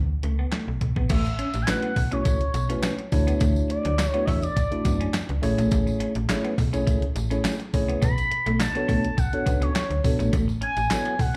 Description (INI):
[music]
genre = early-eighties boogie funk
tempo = 104 BPM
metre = 4/4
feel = straight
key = A major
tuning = A4 = 442 Hz
[part]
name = slap-like FM bass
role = bass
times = 0.0-11.4 s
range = A1 to F#2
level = -27 LUFS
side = equal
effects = none
[part]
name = clean electric guitar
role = riff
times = 0.2-11.4 s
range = F#3 to C#4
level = -34 LUFS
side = equal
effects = lush chorus, slapback echo
[part]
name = clean 12-bit digital drum machine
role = drums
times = 0.2-11.3 s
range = crash cymbal, handclaps, hi-hat, kick drum, snare drum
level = -28 LUFS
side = equal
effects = none
[part]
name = expressive portamento lead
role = melody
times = 1.1-11.4 s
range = C#5 to B5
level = -31 LUFS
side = equal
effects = chorus, slapback echo
[part]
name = tambourine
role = percussion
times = 1.1-11.3 s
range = none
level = -46 LUFS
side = equal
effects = none
[part]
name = tine electric piano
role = accompaniment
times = 1.7-11.1 s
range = A3 to D5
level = -30 LUFS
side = equal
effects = slapback echo
[sound]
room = little or no reverb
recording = live gig heard through the venue's PA, club reverb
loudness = -24 LUFS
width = mono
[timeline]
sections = 0.0-1.1 A section; 1.1-11.4 B section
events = none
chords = 0.0 Bm9; 1.1 A69; 3.1 Dmaj9; 5.4 Amaj7; 8.0 Bm9; 10.3 A69